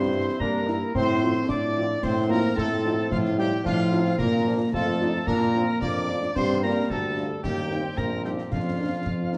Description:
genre	military-style march for wind band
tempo	111 BPM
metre	2/4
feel	straight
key	Bb major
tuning	A4 = 438 Hz
part	mellow trumpet section	melody	0.0-9.4 s	F4 to D5	-34 LUFS	equal	none
part	bright wooden piccolo	second line	0.0-9.4 s	F5 to D6	-36 LUFS	equal	none
part	dark euphonium	second line	0.0-9.4 s	F3 to D4	-30 LUFS	equal	none
part	dark trombone section	sustained chords	0.0-9.4 s	G3 to F4	-36 LUFS	equal	none
part	clear tuba	bass	0.0-9.4 s	Bb1 to Bb2	-30 LUFS	equal	none
part	mellow French horn section	accompaniment	0.1-9.4 s	F3 to F4	-36 LUFS	equal	none
part	concert bass drum, concert snare drum and clash cymbals	drums	0.4-9.4 s	none	-36 LUFS	equal	none
room	wet recital hall reverb, RT60 1.4 s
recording	dark, warm production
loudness	-25 LUFS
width	mono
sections	0.0-9.4 A section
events	none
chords	0.0 Edim/G; 0.9 F/A; 2.0 F7/A; 4.2 Bb; 6.4 G5; 7.4 Eb; 8.5 Bb/F

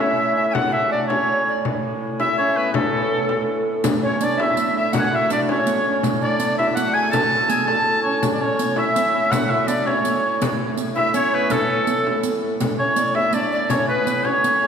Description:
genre	medieval dance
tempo	109 BPM (dotted quarters)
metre	6/8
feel	straight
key	A major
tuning	A4 = 442 Hz
part	clear shawm	melody	0.0-14.7 s	A4 to A5	-21 LUFS	equal	none
part	bright reedy tenor recorder	second line	0.0-14.7 s	A4 to A5	-25 LUFS	left 4 dB	none
part	hammered dulcimer	second line	0.0-14.7 s	A3 to B4	-25 LUFS	right 4 dB	none
part	warm hurdy-gurdy	drone	0.0-14.7 s	A2	-28 LUFS	equal	none
part	frame drum	percussion	0.2-14.4 s	none	-27 LUFS	left 3 dB	none
part	riq	percussion	3.8-14.6 s	none	-28 LUFS	right 6 dB	none
room	wet concert hall reverb, RT60 2.2 s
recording	recorded in a church or concert hall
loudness	-17 LUFS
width	side -7 dB against mid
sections	0.0-3.8 A section; 3.8-12.6 A section; 12.6-14.7 B section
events	none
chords	none

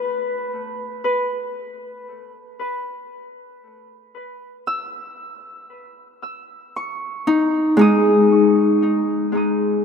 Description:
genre	ambient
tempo	free time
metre	none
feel	none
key	A lydian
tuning	A4 = 441 Hz
part	Celtic harp	solo	0.0-9.8 s	G#3 to E6	-18 LUFS	left 1 dB	tape echo
room	wet cathedral reverb, RT60 5.1 s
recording	none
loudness	-17 LUFS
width	side -6 dB against mid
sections	0.0-9.8 A section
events	none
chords	0.0 Asus2 (rootless); 6.7 G#5

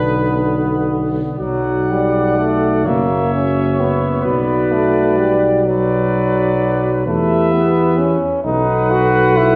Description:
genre	classical, hymn-like piece for brass band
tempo	43 BPM (dotted quarters)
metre	6/8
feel	rubato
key	B minor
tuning	A4 = 443 Hz
part	clear cornet	melody	0.0-9.6 s	B4 to F#5	-26 LUFS	equal	none
part	clear flugelhorn	second line	0.0-9.6 s	B3 to D5	-26 LUFS	equal	none
part	brilliant trombone	accompaniment	0.0-9.6 s	F#3 to F#4	-21 LUFS	equal	none
part	clear euphonium	accompaniment	0.0-9.6 s	D3 to A4	-24 LUFS	equal	none
part	warm tuba	bass	0.0-9.6 s	F#1 to E2	-20 LUFS	equal	none
room	wet recital hall reverb, RT60 1.5 s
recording	heard from further back in the room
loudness	-16 LUFS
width	mono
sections	0.0-1.4 A section; 1.4-9.6 A section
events	none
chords	0.0 Bm; 2.9 F#5; 4.3 Bm; 7.1 Em; 8.5 B5

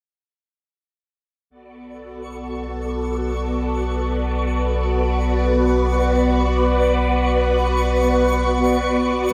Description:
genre	ambient, sequencer-driven space music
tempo	free time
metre	none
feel	none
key	B minor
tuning	A4 = 443 Hz
part	phased string machine	sustained chords	1.5-9.3 s	B3 to D5	-22 LUFS	equal	ensemble chorus, phaser
part	warm sub bass	bass	1.5-9.3 s	B1	-25 LUFS	equal	none
part	twinkling granular texture	texture	2.3-9.3 s	C#6	-33 LUFS	equal	built-in reverb
room	wet lush hall reverb, RT60 2.8 s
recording	dreamy mix soaked in reverb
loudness	-20 LUFS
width	mono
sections	1.5-9.3 A section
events	fade-in on string machine 1.5-9.3; fade-in on sub bass 1.5-9.3; fade-in on synth texture 1.5-9.3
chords	1.5 Bm7

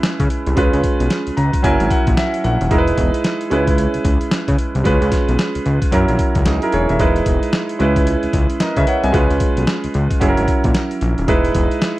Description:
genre	R&B, new jack swing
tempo	112 BPM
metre	4/4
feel	swing 61% on 16ths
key	C# dorian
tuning	A4 = 444 Hz
part	clear concert grand piano	accompaniment	0.0-12.0 s	F#3 to A#5	-18 LUFS	right 2 dB	none
part	boom bap sampler-style drum kit	drums	0.0-12.0 s	hi-hat, kick drum, snare drum	-19 LUFS	equal	none
part	fat analog bass	bass	0.2-11.7 s	D#1 to C#3	-18 LUFS	equal	none
room	little or no reverb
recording	dry, close 1970s-style studio recording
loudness	-14 LUFS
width	side -17 dB against mid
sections	0.0-12.0 A section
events	grand piano fill 1.1-2.7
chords	0.0 C#m7; 0.6 C#7; 1.6 F#7; 2.7 Emaj7; 3.5 C#m7; 4.9 C#7; 5.9 F#7; 7.0 Emaj7; 7.8 C#m7; 9.1 C#7; 10.2 F#7; 11.3 Emaj7

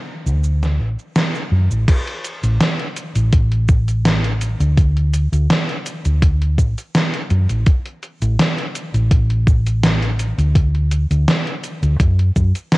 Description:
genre	vaporwave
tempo	83 BPM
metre	4/4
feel	straight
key	unclear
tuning	A4 = 440 Hz
part	hollow-body short-scale fingered electric bass	bass	0.3-12.5 s	A1 to F#2	-16 LUFS	equal	none
part	gated 80s digital drum machine	drums	0.3-12.8 s	cabasa, crash cymbal, hi-hat, snare drum	-20 LUFS	equal	gated reverb, gated reverb snare, overdrive
part	electronic kick drum	drums	1.9-12.5 s	none	-14 LUFS	equal	overdrive
room	light reverb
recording	cassette tape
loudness	-15 LUFS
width	side -21 dB against mid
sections	0.0-1.9 A section; 1.9-12.8 B section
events	none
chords	none

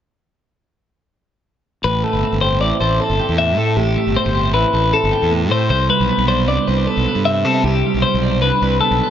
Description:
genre	rock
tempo	156 BPM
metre	5/4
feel	straight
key	unclear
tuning	A4 = 440 Hz
part	twelve-string electric guitar	arpeggios	1.8-9.1 s	G4 to E5	-17 LUFS	left 4 dB	digital delay
part	fuzz fingered electric bass	bass	1.8-9.0 s	G1 to C3	-19 LUFS	equal	overdrive
part	clean electric guitar	accompaniment	1.9-9.1 s	A2 to D5	-21 LUFS	right 9 dB	spring reverb
room	light reverb, digital ambience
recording	nothing above 7.7 kHz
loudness	-14 LUFS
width	side -9 dB against mid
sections	1.9-9.1 A section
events	none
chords	1.9 Am9; 5.7 Cmaj9

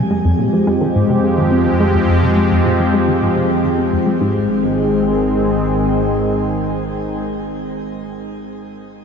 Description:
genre	ambient, sequencer-driven space music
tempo	106 BPM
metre	4/4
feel	straight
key	Ab major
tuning	A4 = 438 Hz
part	sweeping resonant pad	sustained chords	0.0-7.2 s	Eb3 to Ab4	-16 LUFS	left 1 dB	chorus, shimmer reverb
part	plucky analog bass	riff	0.0-4.5 s	F2 to C4	-19 LUFS	equal	shimmer reverb, tape echo
part	analog drone	bass	0.8-5.9 s	Ab1 to F2	-23 LUFS	equal	chorus
room	wet huge ambient reverb, RT60 7.3 s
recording	dark, warm production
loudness	-14 LUFS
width	side -6 dB against mid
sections	0.0-4.2 A section; 4.2-6.5 B section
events	filter sweep on analog synth bass 0.0-4.2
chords	0.0 Fmadd9; 4.2 Ab

